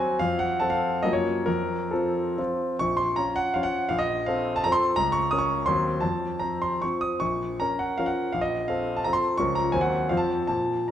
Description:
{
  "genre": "classical, romantic triple-time dance for piano with dotted rhythms",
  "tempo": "125-185 BPM",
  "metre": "3/4",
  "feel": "rubato",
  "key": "Bb minor",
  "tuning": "A4 = 440 Hz",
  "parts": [
    { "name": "clear concert grand piano", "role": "solo", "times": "0.0-10.9 s", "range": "Bb1 to Eb6", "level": "-23 LUFS", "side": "equal", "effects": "none" }
  ],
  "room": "wet recital hall reverb, RT60 1.5 s",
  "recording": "none",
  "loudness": "-23 LUFS",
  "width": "side -10 dB against mid",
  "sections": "0.0-2.8 A section; 2.8-10.9 B section",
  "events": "none",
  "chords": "0.2 F; 1.0 Gbmaj7; 1.5 F; 2.8 Bbm; 3.9 F/Bb; 5.0 Bbm/Db; 5.7 Cdim/Eb; 6.0 F; 7.2 Bbm; 8.3 F/Bb; 9.4 Bbm/Db; 9.7 Cdim/Eb; 10.1 F"
}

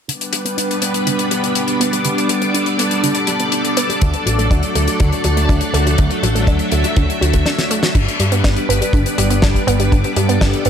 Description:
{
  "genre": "italo disco",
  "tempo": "122 BPM",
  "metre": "4/4",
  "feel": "straight",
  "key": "unclear",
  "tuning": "A4 = 440 Hz",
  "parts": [
    { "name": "string machine, full ensemble", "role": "sustained chords", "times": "0.2-10.7 s", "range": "F#3 to E5", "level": "-18 LUFS", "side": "equal", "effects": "ensemble chorus" },
    { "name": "analog pluck", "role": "arpeggios", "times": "0.1-10.7 s", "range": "D3 to D4", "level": "-23 LUFS", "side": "right 2 dB", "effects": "chorus, ping-pong delay" },
    { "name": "damped 70s drum kit", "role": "drums", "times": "0.1-10.7 s", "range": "crash cymbal, hi-hat, snare drum", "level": "-21 LUFS", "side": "left 4 dB", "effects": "studio reverb" },
    { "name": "picked electric bass with an envelope filter", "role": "bass", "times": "4.0-10.7 s", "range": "G1 to G2", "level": "-18 LUFS", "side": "equal", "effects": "none" },
    { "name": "kick drum", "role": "drums", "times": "4.0-10.5 s", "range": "none", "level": "-16 LUFS", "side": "equal", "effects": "studio reverb" }
  ],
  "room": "light reverb, studio reverb",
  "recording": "none",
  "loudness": "-14 LUFS",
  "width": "side -8 dB against mid",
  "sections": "0.1-8.0 A section; 8.0-10.7 B section",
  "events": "filter sweep on synth arpeggio sound 0.1-8.0; drum fill 7.5-8.0",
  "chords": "0.1 G; 4.0 D; 8.0 G"
}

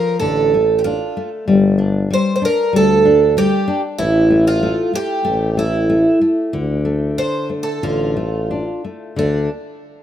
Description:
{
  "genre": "fado-style ballad",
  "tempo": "94 BPM",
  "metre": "4/4",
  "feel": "rubato",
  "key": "D minor",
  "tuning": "A4 = 440 Hz",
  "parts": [
    { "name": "picked twelve-string acoustic guitar", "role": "melody", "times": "0.0-9.5 s", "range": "D4 to C5", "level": "-16 LUFS", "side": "right 2 dB", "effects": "none" },
    { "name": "nylon-string guitar", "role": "accompaniment", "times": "0.0-9.5 s", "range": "D3 to D4", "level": "-20 LUFS", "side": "left 4 dB", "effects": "none" },
    { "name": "warm tuba", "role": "bass", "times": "0.2-9.5 s", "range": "G1 to D2", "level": "-20 LUFS", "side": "equal", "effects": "none" }
  ],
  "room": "light reverb",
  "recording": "rough home demo mix",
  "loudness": "-14 LUFS",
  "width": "side -10 dB against mid",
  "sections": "0.0-9.2 A section",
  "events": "none",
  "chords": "0.0 Dm; 1.5 Gsus2; 4.0 A5; 6.5 Dm; 9.2 D5"
}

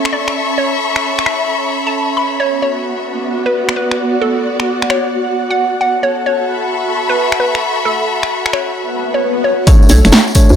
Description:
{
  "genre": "UK garage, two-step garage",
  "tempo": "132 BPM",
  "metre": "4/4",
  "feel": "swing 67% on 16ths",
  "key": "B minor",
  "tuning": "A4 = 438 Hz",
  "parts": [
    { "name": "hollow square pluck", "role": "melody", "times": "0.0-10.1 s", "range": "A4 to B5", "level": "-18 LUFS", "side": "equal", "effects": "chorus, tape echo" },
    { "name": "ethereal airy pad", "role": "sustained chords", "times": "0.0-10.6 s", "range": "C#4 to A5", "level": "-22 LUFS", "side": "right 2 dB", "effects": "ensemble chorus, built-in reverb, phaser, sidechain pumping" },
    { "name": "dark studio string section", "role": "texture", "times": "0.0-9.7 s", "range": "B3 to C#6", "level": "-18 LUFS", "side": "left 2 dB", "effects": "sidechain pumping" },
    { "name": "punchy analog drum machine", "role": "drums", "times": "0.1-10.5 s", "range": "finger snaps, hi-hat, snare drum", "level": "-15 LUFS", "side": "equal", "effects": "none" },
    { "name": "swell", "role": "sound effects", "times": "8.9-9.7 s", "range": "none", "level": "-20 LUFS", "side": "left 6 dB", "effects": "none" },
    { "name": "bell-like tine electric piano", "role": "stabs", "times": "9.7-10.6 s", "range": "A3 to C#5", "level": "-16 LUFS", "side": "equal", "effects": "tape echo" },
    { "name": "electronic kick drum", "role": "drums", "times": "9.7-10.5 s", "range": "none", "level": "-7 LUFS", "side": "equal", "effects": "none" },
    { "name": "tambourine", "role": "percussion", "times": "9.7-10.6 s", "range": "none", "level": "-22 LUFS", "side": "left 2 dB", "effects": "none" },
    { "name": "hollow knocking FM bass", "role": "bass", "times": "9.9-10.6 s", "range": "F#1 to D2", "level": "-8 LUFS", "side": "equal", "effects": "tube saturation" }
  ],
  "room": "moderate plate reverb, RT60 2.3 s",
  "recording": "none",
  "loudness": "-12 LUFS",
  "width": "side -9 dB against mid",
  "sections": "0.0-9.7 A section",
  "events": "filter sweep on ambient pad 0.0-9.7; swell 8.9-9.7",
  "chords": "0.0 Bsus2; 2.4 Bm9"
}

